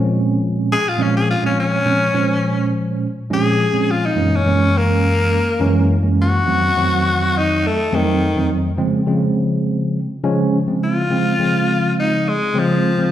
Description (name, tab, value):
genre	blues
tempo	104 BPM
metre	4/4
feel	straight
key	Bb minor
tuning	A4 = 440 Hz
part	tine electric piano	accompaniment	0.0-13.1 s	F2 to C5	-17 LUFS	right 1 dB	medium stereo tremolo
part	raspy tenor saxophone	melody	0.7-13.1 s	Eb3 to Ab4	-18 LUFS	left 2 dB	plate reverb, slapback echo
room	moderate club reverb, RT60 0.5 s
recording	live gig heard through the venue's PA, recital hall reverb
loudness	-15 LUFS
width	side -11 dB against mid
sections	0.0-13.1 A section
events	tenor saxophone solo 0.0-13.1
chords	0.0 Bbm9; 4.2 Gb7; 6.5 F7b9; 8.8 Dbmaj7